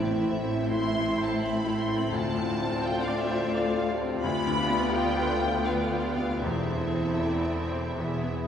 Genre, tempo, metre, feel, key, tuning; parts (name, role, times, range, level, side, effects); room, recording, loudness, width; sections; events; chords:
classical, romantic movement for piano and orchestra; 76-89 BPM; 3/4; rubato; A minor; A4 = 440 Hz
bright grand piano; melody; 0.0-8.5 s; D2 to E5; -29 LUFS; left 1 dB
rich symphonic violin section; melody; 0.0-8.3 s; E5 to C6; -34 LUFS; left 2 dB
dark studio violin section; second line; 0.0-8.5 s; F4 to E5; -36 LUFS; equal
rich symphonic viola section; accompaniment; 0.0-8.5 s; B3 to F4; -35 LUFS; equal
mellow French horn section; sustained chords; 0.0-8.3 s; E4 to C5; -34 LUFS; left 2 dB
warm symphonic cello section; bass; 0.0-8.5 s; D2 to A2; -35 LUFS; equal
warm symphonic double bass section; bass; 0.0-8.5 s; E1 to D2; -36 LUFS; right 2 dB
timpani; percussion; 0.0-1.0, 6.4-7.6 s; E2 to A2; -38 LUFS; equal
wet concert hall reverb, RT60 2.5 s; recorded in a church or concert hall, nothing above 10.9 kHz; -25 LUFS; side -8 dB against mid
0.0-8.5 A section
0.0 Am; 2.1 Dm7; 4.2 Bdim/D; 6.4 Am/E; 8.0 E